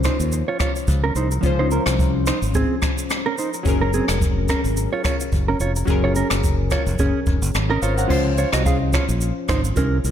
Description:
afrobeats; 108 BPM; 4/4; swing 55% on 16ths; Db major; A4 = 439 Hz
glassy digital keys; accompaniment; 0.0-10.1 s; F3 to Gb5; -25 LUFS; left 3 dB; chorus
modern bright fingered electric bass; bass; 0.0-10.1 s; F1 to Eb2; -22 LUFS; equal
jazz brush drum kit; drums; 0.0-10.1 s; crash cymbal, finger snaps, kick drum, rim click, shaker; -22 LUFS; equal
mellow electric guitar; riff; 0.1-10.0 s; C4 to F5; -25 LUFS; right 4 dB; ping-pong delay
light reverb, small room ambience; -18 LUFS; side -10 dB against mid
0.0-8.1 A section; 8.1-10.1 B section
0.0 Dbmaj7; 3.7 Gbadd9; 8.1 Dbmaj7
0.32 0.88 | 1.43 1.99 2.54 3.10 | 3.66 4.21 4.77 5.32 | 5.88 6.43 6.99 7.54 | 8.10 8.66 9.21 9.77

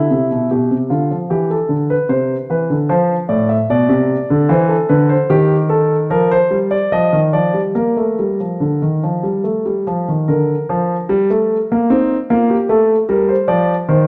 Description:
classical, baroque-style two-part invention for grand piano; 75 BPM; 3/4; straight; Bb major from 5.3 s; A4 = 440 Hz
dark concert grand piano; solo; 0.0-14.1 s; A2 to E5; -15 LUFS; equal
moderate recital hall reverb, RT60 1.7 s; dark, warm production; -16 LUFS; mono
0.5-10.3 A section; 10.3-14.1 B section
0.0 C; 0.5 G/B; 2.1 Cmaj9; 2.9 Dm7; 4.5 C/E; 5.3 Eb; 6.1 Bb/F; 6.9 Ebmaj9; 7.8 Bb5; 10.3 Bb/D; 11.9 Cm7; 12.7 F7
| 0.50 1.31 2.11 | 2.91 3.71 4.51 | 5.31 6.11 6.93 | 7.76 8.61 9.45 | 10.29 11.11 11.91 | 12.71 13.51

